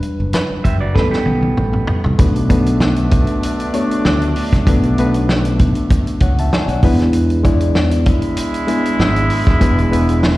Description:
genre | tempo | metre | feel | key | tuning
lush 1970s-style soul | 97 BPM | 4/4 | swing 54% on 16ths | B dorian | A4 = 440 Hz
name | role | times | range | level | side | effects
reed electric piano | accompaniment | 0.0-10.4 s | F#3 to A5 | -18 LUFS | left 1 dB | overdrive
warm soul drum kit | drums | 0.0-10.4 s | hi-hat, kick drum, snare drum, toms | -16 LUFS | equal | none
modern bright fingered electric bass | bass | 0.2-10.4 s | E1 to E2 | -17 LUFS | equal | none
electric guitar through a small old amp | riff | 0.6-2.0 s | B3 to E5 | -24 LUFS | right 4 dB | slapback echo
mellow horn section | stabs | 2.2-10.4 s | B2 to E4 | -23 LUFS | right 2 dB | slapback echo
room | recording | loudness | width
small room ambience | live gig heard through the venue's PA, recital hall reverb | -13 LUFS | side -18 dB against mid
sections
0.0-2.2 A section; 2.2-10.4 B section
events
reed electric piano solo 0.0-2.2; drum fill 0.9-2.2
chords
0.0 Em9; 0.9 A9; 2.2 Bm7; 6.8 E7

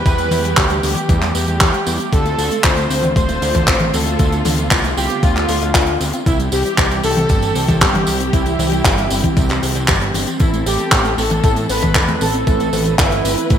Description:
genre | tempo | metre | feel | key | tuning
italo disco | 116 BPM | 4/4 | straight | A minor | A4 = 440 Hz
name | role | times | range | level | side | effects
analog synth brass | melody | 0.0-13.6 s | E4 to C5 | -20 LUFS | right 1 dB | chorus, vintage 12-bit sampler grit, digital delay
dark symphonic string section | sustained chords | 0.0-13.6 s | D3 to B4 | -24 LUFS | equal | none
fat analog bass | bass | 0.0-13.6 s | D1 to A2 | -21 LUFS | equal | none
warbly dusty pluck | arpeggios | 0.1-13.6 s | G3 to C5 | -27 LUFS | left 2 dB | chorus, cassette tape, digital delay
electronic kick drum | drums | 0.1-13.6 s | none | -16 LUFS | equal | overdrive
tight funk drum kit | drums | 0.1-13.6 s | handclaps, hi-hat, tambourine, toms | -18 LUFS | equal | gated reverb
room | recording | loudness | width
moderate lush hall reverb, RT60 2.3 s | bright 1980s-style digital production | -13 LUFS | side -9 dB against mid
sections
0.0-13.6 A section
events
none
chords
0.0 Em; 2.1 Dm7; 6.3 C; 10.4 Am

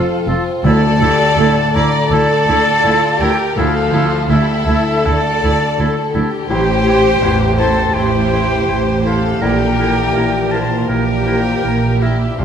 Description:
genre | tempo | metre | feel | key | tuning
cinematic, emotional film score for orchestra | 82 BPM | 4/4 | rubato | D minor | A4 = 440 Hz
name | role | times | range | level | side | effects
warm symphonic violin section | melody | 0.0-12.4 s | E4 to C5 | -25 LUFS | left 3 dB | none
bright concert flute | second line | 0.0-12.4 s | E5 to Bb5 | -19 LUFS | equal | none
clear clarinet | second line | 0.0-12.4 s | E4 to G4 | -26 LUFS | left 1 dB | none
warm oboe | second line | 0.0-12.4 s | A4 to C5 | -26 LUFS | right 2 dB | none
warm symphonic violin section | second line | 0.0-12.4 s | G4 to D5 | -22 LUFS | left 2 dB | none
clear concert grand piano | accompaniment | 0.0-12.4 s | A1 to C4 | -21 LUFS | left 1 dB | none
rich symphonic viola section | accompaniment | 0.0-12.4 s | F3 to D5 | -21 LUFS | right 1 dB | none
dark French horn section | sustained chords | 0.0-12.4 s | D3 to C5 | -23 LUFS | left 3 dB | none
warm studio double bass section | bass | 0.3-12.4 s | F1 to D2 | -21 LUFS | right 3 dB | none
warm symphonic cello section | bass | 0.3-12.4 s | D2 to C3 | -21 LUFS | right 2 dB | none
timpani | percussion | 0.6-1.7 s | D3 | -22 LUFS | left 1 dB | none
room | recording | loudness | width
moderate scoring stage reverb, RT60 1.8 s | none | -12 LUFS | side -8 dB against mid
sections
0.0-12.4 A section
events
none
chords
0.0 F; 0.6 Dsus2; 6.5 Am7; 9.4 Edim/Bb

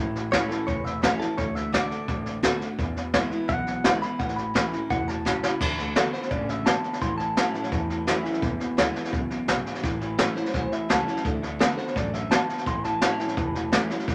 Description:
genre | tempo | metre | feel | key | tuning
rockabilly | 170 BPM | 4/4 | straight | A major | A4 = 440 Hz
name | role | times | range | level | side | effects
picked steel-string acoustic guitar | accompaniment | 0.0-14.1 s | E2 to F#4 | -35 LUFS | equal | none
electric guitar through a small old amp | riff | 0.0-14.1 s | E2 to B3 | -34 LUFS | equal | none
upright bass | bass | 0.0-14.1 s | E1 to E2 | -38 LUFS | equal | none
jazz brush drum kit | drums | 0.2-14.1 s | crash cymbal, hi-hat, kick drum, snare drum | -28 LUFS | equal | none
direct-recorded clean electric guitar | melody | 0.3-13.9 s | A4 to C6 | -33 LUFS | equal | none
room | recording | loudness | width
wet club reverb, RT60 0.5 s | none | -26 LUFS | mono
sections
0.0-5.6 A section; 5.6-14.1 B section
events
drum fill 5.3-5.6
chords
0.0 A; 1.4 D; 2.8 E7; 4.2 A; 5.6 D; 7.0 A; 8.4 E7; 9.8 A; 11.3 D; 12.7 A

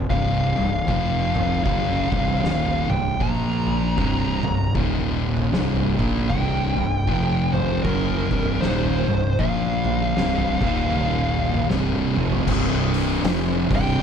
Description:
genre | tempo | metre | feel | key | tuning
stoner and doom metal | 78 BPM | 4/4 | swing 60% on 8ths | C phrygian | A4 = 440 Hz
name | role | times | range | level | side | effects
fuzz fingered electric bass | bass | 0.0-14.0 s | C1 to Bb1 | -27 LUFS | equal | overdrive
fuzz lead guitar | melody | 0.1-14.0 s | Bb4 to Bb5 | -27 LUFS | left 1 dB | distortion
thick fuzz guitar | riff | 0.1-14.0 s | C2 to Bb3 | -26 LUFS | left 10 dB | distortion
thick fuzz guitar | riff | 0.1-14.0 s | C2 to Bb3 | -26 LUFS | right 10 dB | distortion
oversized low-tuned drum kit | drums | 0.1-13.9 s | crash cymbal, hi-hat, kick drum, snare drum, toms | -25 LUFS | equal | none
room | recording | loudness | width
light reverb | dark, warm production | -19 LUFS | side -7 dB against mid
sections
0.0-12.5 A section; 12.5-14.0 B section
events
drum fill 11.7-12.5; lead electric guitar solo 12.5-14.0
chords
0.0 C5; 0.9 F5; 1.7 Cm; 3.2 Bb5; 4.0 C5; 4.8 Eb5; 5.5 C5; 7.1 F5; 7.9 Cm; 9.4 Bb5; 10.2 C5; 10.6 Eb5; 11.7 C5

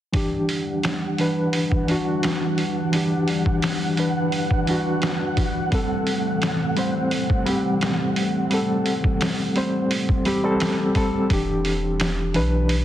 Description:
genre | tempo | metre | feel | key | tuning
trip hop | 86 BPM | 4/4 | straight | E minor | A4 = 440 Hz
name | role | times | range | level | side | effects
mellow reed electric piano | accompaniment | 0.1-12.8 s | E3 to C5 | -22 LUFS | equal | fast tremolo, tape echo
string machine, cellos | sustained chords | 0.1-11.3 s | E3 to D4 | -28 LUFS | equal | ensemble chorus
trip hop sampler-style drum kit | drums | 0.1-12.8 s | hi-hat, kick drum, snare drum | -25 LUFS | equal | none
flickering grainy texture | texture | 0.6-11.3 s | F#5 | -32 LUFS | right 1 dB | built-in reverb
soft dub sub bass | bass | 11.3-12.8 s | E1 to B1 | -24 LUFS | equal | none
room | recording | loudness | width
light reverb | heavily compressed radio sound | -20 LUFS | side -12 dB against mid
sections
0.1-11.3 A section; 11.3-12.8 B section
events
none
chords
0.1 Em7; 5.7 Am7/E; 11.3 Em7

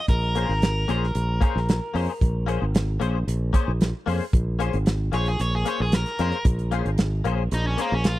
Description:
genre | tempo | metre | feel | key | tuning
straight-eighth soul blues | 113 BPM | 4/4 | straight | Bb minor | A4 = 441 Hz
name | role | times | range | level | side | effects
biting overdriven guitar | melody | 0.0-8.2 s | Bb3 to Db5 | -29 LUFS | equal | spring reverb
fingered electric bass | bass | 0.1-8.2 s | Ab1 to F2 | -24 LUFS | equal | none
warm soul drum kit | drums | 0.1-8.2 s | hi-hat, kick drum, snare drum | -22 LUFS | right 1 dB | none
direct-recorded clean electric guitar | stabs | 0.4-8.0 s | Bb3 to C5 | -28 LUFS | left 8 dB | ensemble chorus
room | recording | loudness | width
studio ambience | dry, close 1970s-style studio recording | -21 LUFS | side -16 dB against mid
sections
0.0-4.3 A section; 4.3-8.2 B section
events
overdriven electric guitar solo 4.3-8.2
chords
0.1 Bbm9

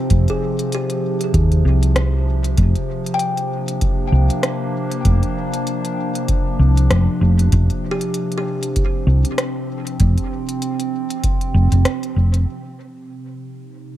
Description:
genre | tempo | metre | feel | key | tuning
ambient dub | 97 BPM | 4/4 | swing 57% on 16ths | unclear | A4 = 442 Hz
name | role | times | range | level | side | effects
warbly tape-like pad | sustained chords | 0.0-14.0 s | C3 to Eb4 | -23 LUFS | equal | chorus, built-in reverb
hollow-body short-scale fingered electric bass | bass | 0.1-12.4 s | F1 to Eb2 | -14 LUFS | equal | none
electronic kick drum | drums | 0.1-11.4 s | none | -21 LUFS | equal | none
organic electronic drum kit | drums | 0.1-12.4 s | hi-hat, rim click | -25 LUFS | left 1 dB | overdrive, dub echo
kalimba | arpeggios | 0.3-10.0 s | G4 to G5 | -27 LUFS | equal | low-pass filter, dub echo
room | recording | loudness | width
light reverb | none | -16 LUFS | side -13 dB against mid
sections
0.0-12.5 A section; 12.5-14.0 B section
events
none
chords
0.0 Fm9; 2.6 Gm/F; 12.5 F7(no3)

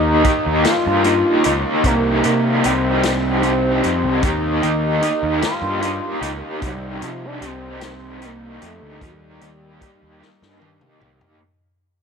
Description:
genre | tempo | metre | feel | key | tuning
psychedelic rock | 50 BPM (dotted quarters) | 6/8 | straight | unclear | A4 = 437 Hz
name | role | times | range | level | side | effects
pulse-width lead | melody | 0.0-11.0 s | G3 to F4 | -21 LUFS | equal | chorus, tape echo
raw garage guitar | riff | 0.0-11.4 s | C3 to G4 | -20 LUFS | equal | overdrive, tremolo
fuzz picked electric bass | bass | 0.0-11.2 s | C2 to C3 | -24 LUFS | equal | overdrive, tube saturation
vintage drum kit | drums | 0.2-11.4 s | hi-hat, kick drum, snare drum, toms | -25 LUFS | left 2 dB | none
mellow tonewheel organ | sustained chords | 1.8-11.4 s | Eb4 to G5 | -33 LUFS | right 11 dB | none
room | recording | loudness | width
moderate echo chamber reverb, RT60 2.0 s | 1960s-style stereo | -16 LUFS | side -6 dB against mid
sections
0.0-11.4 A section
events
fade-out 0.0-11.4; drum fill 10.2-11.4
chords
0.0 Ebadd9; 1.8 Cm; 4.2 Ebadd9; 6.6 Cm; 9.0 Ebadd9

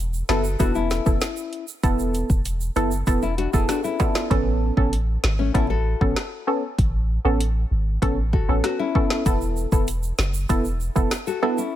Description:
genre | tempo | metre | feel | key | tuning
dancehall | 97 BPM | 4/4 | straight | A major | A4 = 441 Hz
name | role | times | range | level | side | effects
punchy sub bass | bass | 0.0-11.1 s | E1 to A1 | -24 LUFS | equal | none
tube shaker and timbales | percussion | 0.1-4.3, 9.3-11.7 s | none | -35 LUFS | right 9 dB | none
wavetable chord stab | accompaniment | 0.3-11.6 s | B3 to A4 | -24 LUFS | right 1 dB | sidechain pumping
nylon-string guitar | arpeggios | 0.3-11.8 s | A3 to A4 | -27 LUFS | left 9 dB | none
afro-pop drum kit | drums | 0.3-11.3 s | hi-hat, kick drum, rim click, snare drum | -23 LUFS | equal | none
room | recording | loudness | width
little or no reverb | none | -20 LUFS | side -12 dB against mid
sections
0.0-4.3 A section; 4.3-11.8 B section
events
none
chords
0.0 Esus4; 4.3 Aadd9; 9.3 Esus4

